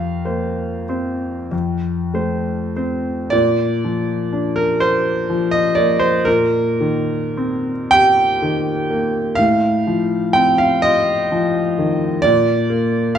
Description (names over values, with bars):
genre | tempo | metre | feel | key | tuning
classical, romantic nocturne for solo piano | 31-44 BPM (dotted quarters) | 12/8 | rubato | Bb major | A4 = 436 Hz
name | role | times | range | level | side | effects
warm concert grand piano | solo | 0.0-13.2 s | F2 to G5 | -15 LUFS | equal | none
room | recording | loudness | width
wet recital hall reverb, RT60 1.6 s | recorded in a church or concert hall | -15 LUFS | side -9 dB against mid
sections
0.0-3.3 A section; 3.3-13.2 B section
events
none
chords
0.0 Fsus4; 1.5 F; 3.3 Bb; 6.3 Cm7/Bb; 9.4 F7/A; 12.2 Bb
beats
1.52 | 3.32 4.81 6.26 7.92 | 9.37 10.82 12.23